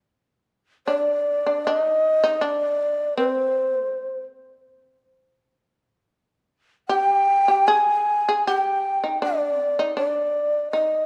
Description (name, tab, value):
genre	japanese traditional, Japanese chamber music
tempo	80 BPM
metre	2/4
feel	rubato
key	unclear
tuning	A4 = 440 Hz
part	breathy mellow long shakuhachi	melody	0.9-4.2, 6.9-11.1 s	C5 to Ab5	-22 LUFS	equal	none
part	shamisen	second line	0.9-4.2, 6.9-11.1 s	C4 to Ab4	-29 LUFS	equal	none
room	moderate scoring stage reverb, RT60 1.9 s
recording	dark, warm production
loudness	-22 LUFS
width	mono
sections	0.0-1.7 A section; 1.7-11.1 B section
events	none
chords	none